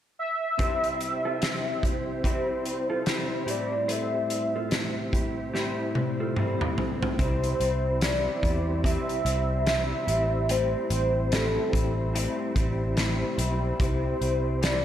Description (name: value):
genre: indie pop, bedroom pop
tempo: 73 BPM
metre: 4/4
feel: swing 60% on 16ths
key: C major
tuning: A4 = 436 Hz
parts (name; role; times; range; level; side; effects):
- warm velvety synth lead; melody; 0.2-14.8 s; A4 to E5; -29 LUFS; equal; lush chorus, slapback echo
- mellow electric guitar; second line; 0.6-7.0 s; E4 to C5; -36 LUFS; right 2 dB; wide subtle chorus, slapback echo, tape echo
- electric guitar through a small old amp; accompaniment; 0.6-14.8 s; A2 to E4; -33 LUFS; left 2 dB; ensemble chorus, vibrato effect, slapback echo
- mellow tonewheel organ; accompaniment; 0.6-14.8 s; A2 to C5; -33 LUFS; right 1 dB; chorus vibrato, slow rotary speaker, slapback echo
- loose indie drum kit; drums; 0.6-14.8 s; hi-hat, kick drum, snare drum, toms; -29 LUFS; equal; none
- vintage muted picked electric bass; bass; 7.2-14.8 s; A1 to E2; -28 LUFS; equal; none
room: moderate concert hall reverb, RT60 2.2 s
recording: big arena sound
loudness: -24 LUFS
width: side -10 dB against mid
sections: 0.6-7.2 A section; 7.2-14.8 B section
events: drum fill 5.5-7.2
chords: 0.0 N.C.; 0.6 C; 3.5 Am7; 7.2 C; 10.1 Am7; 13.8 C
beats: | 0.59 1.41 2.24 3.06 | 3.89 4.72 5.54 6.37 | 7.19 8.02 8.85 9.67 | 10.50 11.32 12.15 12.97 | 13.80 14.62